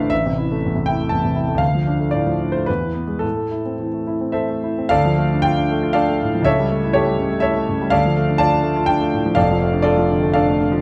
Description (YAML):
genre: classical, romantic character piece for solo piano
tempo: 103-129 BPM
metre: 3/4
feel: rubato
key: A minor, D minor from 4.9 s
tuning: A4 = 439 Hz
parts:
  - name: warm concert grand piano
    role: solo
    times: 0.0-10.8 s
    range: F1 to A5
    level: -19 LUFS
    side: equal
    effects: none
room: light reverb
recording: close, detailed microphones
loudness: -19 LUFS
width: mono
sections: 0.0-4.9 A section; 4.9-10.8 B section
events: none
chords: 0.1 Am; 1.6 Dm; 2.7 E; 3.2 Am; 4.9 Dm; 6.5 A7/C#; 7.9 Dm; 9.4 Dm/F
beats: | 0.10 0.61 1.10 | 1.61 2.13 2.68 | 3.24 3.80 4.35 | 4.92 5.45 5.96 | 6.46 6.96 7.45 | 7.94 8.40 8.88 | 9.37 9.84 10.33